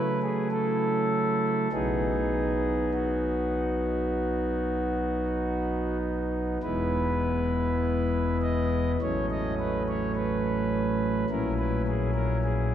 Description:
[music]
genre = classical, chorale-style piece for pipe organ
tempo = 48-53 BPM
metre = 4/4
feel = rubato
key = unclear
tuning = A4 = 440 Hz
[part]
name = pipe organ, principal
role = solo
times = 0.0-12.7 s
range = E1 to D#5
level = -25 LUFS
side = equal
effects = none
[sound]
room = wet cathedral reverb, RT60 4.6 s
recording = heard from further back in the room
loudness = -25 LUFS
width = side -10 dB against mid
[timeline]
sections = 0.0-12.7 A section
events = none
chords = 0.0 F#m7/C#; 1.7 B; 6.6 E; 9.0 F#m/A; 11.3 F#7/A#

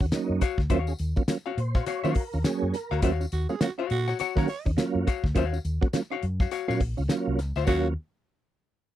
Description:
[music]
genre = funk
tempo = 103 BPM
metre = 4/4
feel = swing 60% on 16ths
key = Eb minor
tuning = A4 = 440 Hz
[part]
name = tonewheel organ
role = stabs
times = 0.0-7.9 s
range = Gb3 to Db5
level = -28 LUFS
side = right 5 dB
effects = chorus vibrato, fast rotary speaker
[part]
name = vintage muted fingered electric bass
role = bass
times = 0.0-7.9 s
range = Bb1 to Eb3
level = -28 LUFS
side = equal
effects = none
[part]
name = damped 70s drum kit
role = drums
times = 0.0-7.8 s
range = crash cymbal, hi-hat, kick drum, snare drum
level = -26 LUFS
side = left 1 dB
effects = none
[part]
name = tambourine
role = percussion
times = 0.1-7.9 s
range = none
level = -49 LUFS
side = left 4 dB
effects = none
[part]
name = archtop guitar, miked and amplified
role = accompaniment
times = 0.4-7.9 s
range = Gb4 to Gb5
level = -30 LUFS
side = left 11 dB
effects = none
[part]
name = growling tenor saxophone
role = second line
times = 3.3-7.9 s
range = Gb4 to Db5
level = -31 LUFS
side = right 7 dB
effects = none
[sound]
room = light reverb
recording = dry, close 1970s-style studio recording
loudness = -24 LUFS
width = side -12 dB against mid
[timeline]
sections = 0.0-7.7 A section; 7.7-9.0 B section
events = tonewheel organ fill 1.3-3.0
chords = 0.0 Ebm9

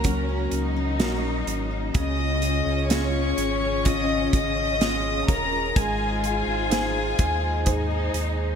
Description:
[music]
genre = pop ballad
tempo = 63 BPM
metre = 4/4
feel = straight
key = Db major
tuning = A4 = 440 Hz
[part]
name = warm chamber violin section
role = melody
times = 0.0-8.1 s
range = Ab4 to Eb6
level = -27 LUFS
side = left 2 dB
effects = none
[part]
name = rich studio cello section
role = second line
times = 0.0-8.6 s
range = Db4 to F4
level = -31 LUFS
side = left 2 dB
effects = none
[part]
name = warm concert grand piano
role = accompaniment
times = 0.0-8.6 s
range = Db3 to C5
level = -32 LUFS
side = right 4 dB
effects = analog chorus
[part]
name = airy breathy pad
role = sustained chords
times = 0.0-8.6 s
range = Db3 to C5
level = -32 LUFS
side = equal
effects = chorus
[part]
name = picked steel-string acoustic guitar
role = arpeggios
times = 0.0-8.6 s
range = Ab2 to Bb4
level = -34 LUFS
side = left 8 dB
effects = lush chorus, digital delay
[part]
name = sub bass with octave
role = bass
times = 0.0-8.6 s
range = Eb1 to Eb2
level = -28 LUFS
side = equal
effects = none
[part]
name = modern studio drum kit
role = drums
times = 0.0-8.4 s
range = hi-hat, kick drum, snare drum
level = -25 LUFS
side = right 1 dB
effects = gated reverb
[sound]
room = moderate lush hall reverb, RT60 3.0 s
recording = bright 1980s-style digital production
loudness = -21 LUFS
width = side -7 dB against mid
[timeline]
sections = 0.0-8.6 A section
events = none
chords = 0.0 Gb; 1.9 Db; 5.8 Ab

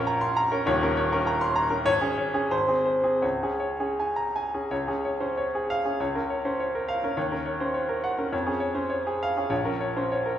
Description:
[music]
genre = classical, romantic character piece for solo piano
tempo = 79-104 BPM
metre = 2/4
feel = rubato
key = Db major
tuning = A4 = 438 Hz
[part]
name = bright grand piano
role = solo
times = 0.0-10.4 s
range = Eb1 to C6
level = -24 LUFS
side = equal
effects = none
[sound]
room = wet recital hall reverb, RT60 1.3 s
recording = heard from further back in the room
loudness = -24 LUFS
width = side -10 dB against mid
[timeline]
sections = 0.0-4.7 A section; 4.7-10.4 A section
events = none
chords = 0.0 Bbm; 0.7 Eb5; 1.9 Db5/Ab; 2.5 Ab; 3.2 Db5; 4.7 Db; 6.0 Bbm/Db; 7.2 Ebm7; 8.3 Db/F; 9.5 Bbm

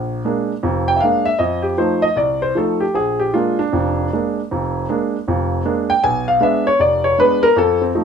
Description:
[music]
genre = solo jazz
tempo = 157 BPM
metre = 4/4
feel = swing 65% on 8ths, rubato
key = unclear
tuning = A4 = 440 Hz
[part]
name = warm concert grand piano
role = solo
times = 0.0-8.0 s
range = F1 to G#5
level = -15 LUFS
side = equal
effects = none
[sound]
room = light reverb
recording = minimal, uncompressed stereo recording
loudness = -15 LUFS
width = side -7 dB against mid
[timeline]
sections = 0.0-8.0 A section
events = grand piano solo 0.0-8.0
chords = 0.0 Bb7; 1.4 F7; 3.0 Bb7; 6.0 Bdim7

